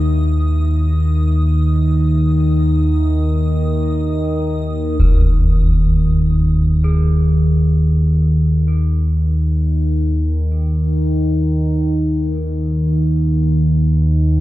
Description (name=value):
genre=dark ambient drone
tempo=free time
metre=none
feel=none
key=Eb phrygian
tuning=A4 = 440 Hz
part: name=dark analog pad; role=sustained chords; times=0.0-5.0 s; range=Eb3 to E5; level=-41 LUFS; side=equal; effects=none
part: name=analog drone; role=drone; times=0.0-14.4 s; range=Eb2 to Eb3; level=-14 LUFS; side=equal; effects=chorus
part: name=icy glass pad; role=texture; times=0.0-5.0 s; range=Eb6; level=-37 LUFS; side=right 1 dB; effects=chorus, built-in reverb
part: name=gamelan-type bronze metallophone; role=arpeggios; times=5.0-14.2 s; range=Ab4 to Bb4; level=-35 LUFS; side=right 5 dB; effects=tape echo
part: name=concert bass drum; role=percussion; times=5.0-5.2 s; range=none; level=-17 LUFS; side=equal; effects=low-pass filter on kick
room=light reverb, small room ambience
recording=echo-heavy mix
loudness=-14 LUFS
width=side -16 dB against mid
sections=0.0-5.0 A section; 5.0-14.4 B section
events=none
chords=0.0 Eadd9/Eb; 5.0 Ebsus4